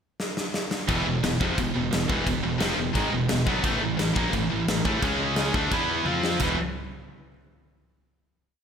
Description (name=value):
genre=heavy metal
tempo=174 BPM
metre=4/4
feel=straight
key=unclear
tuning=A4 = 440 Hz
part: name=big rock drum kit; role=drums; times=0.2-6.5 s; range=crash cymbal, kick drum, snare drum, toms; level=-28 LUFS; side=equal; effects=gated reverb
part: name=heavy high-gain guitar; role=riff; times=0.9-6.6 s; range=E2 to F4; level=-28 LUFS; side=left 8 dB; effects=distortion
part: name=scooped high-gain guitar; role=riff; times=0.9-6.6 s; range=E2 to F4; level=-27 LUFS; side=right 8 dB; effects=distortion
part: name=fuzz fingered electric bass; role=bass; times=0.9-6.6 s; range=E1 to F2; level=-32 LUFS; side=equal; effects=overdrive
room=moderate lush hall reverb, RT60 1.9 s, small room ambience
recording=bright 1980s-style digital production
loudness=-23 LUFS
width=side -7 dB against mid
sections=0.0-0.9 pickup bar; 0.9-6.4 riff; 6.4-7.8 final chord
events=drum fill 0.2-0.9, 6.1-6.4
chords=0.0 N.C.; 0.9 E; 3.7 A5; 5.0 C#5; 5.5 D5; 5.7 E5; 6.1 F5; 6.4 E5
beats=0.20 0.55 | 0.89 1.24 1.58 1.93 | 2.27 2.62 2.96 3.31 | 3.65 3.99 4.34 4.68 | 5.03 5.37 5.71 6.06 | 6.41